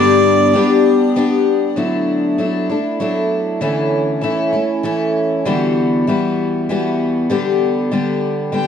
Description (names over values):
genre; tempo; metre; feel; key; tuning
acoustic folk duo or small band; 98 BPM; 3/4; straight; D major; A4 = 440 Hz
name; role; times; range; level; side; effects
mellow harmonica; melody; 0.0-1.1, 8.5-8.7 s; D5 to G5; -16 LUFS; right 3 dB; none
picked twelve-string acoustic guitar; accompaniment; 0.0-8.7 s; G2 to G4; -14 LUFS; left 2 dB; none
icy glass pad; sustained chords; 0.0-1.8 s; B3 to F#5; -23 LUFS; equal; chorus, built-in reverb
room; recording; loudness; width
moderate small room reverb, RT60 0.6 s; dark, warm production; -14 LUFS; side -8 dB against mid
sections
0.0-1.8 A section; 1.8-8.7 B section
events
none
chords
0.0 G; 1.8 Dadd9; 3.6 A/D; 5.5 Emadd9/D; 7.3 G/D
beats
0.55 1.16 | 1.77 2.38 3.00 | 3.61 4.23 4.84 | 5.46 6.07 6.69 | 7.30 7.91 8.53